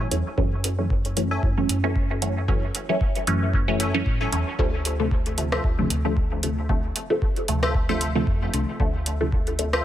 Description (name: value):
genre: dub techno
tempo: 114 BPM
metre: 4/4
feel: swing 55% on 16ths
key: F# minor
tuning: A4 = 439 Hz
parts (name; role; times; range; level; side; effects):
- soft dub sub bass; bass; 0.0-9.8 s; C2 to A2; -27 LUFS; equal; sidechain pumping
- filtered dub chord stab; stabs; 0.1-9.8 s; C3 to C#4; -26 LUFS; equal; phaser, vintage 12-bit sampler grit, sidechain pumping, dub echo
- booming analog drum machine; drums; 0.1-9.8 s; hi-hat, rim click; -27 LUFS; right 1 dB; overdrive
- electronic kick drum; drums; 0.4-9.4 s; none; -25 LUFS; equal; overdrive
- wavetable chord stab; riff; 1.3-9.8 s; F4 to G#5; -32 LUFS; left 3 dB; sidechain pumping, dub echo
room: light reverb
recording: none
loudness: -21 LUFS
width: side -12 dB against mid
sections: 0.0-9.8 A section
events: none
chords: 0.0 F#m7; 4.6 Dm7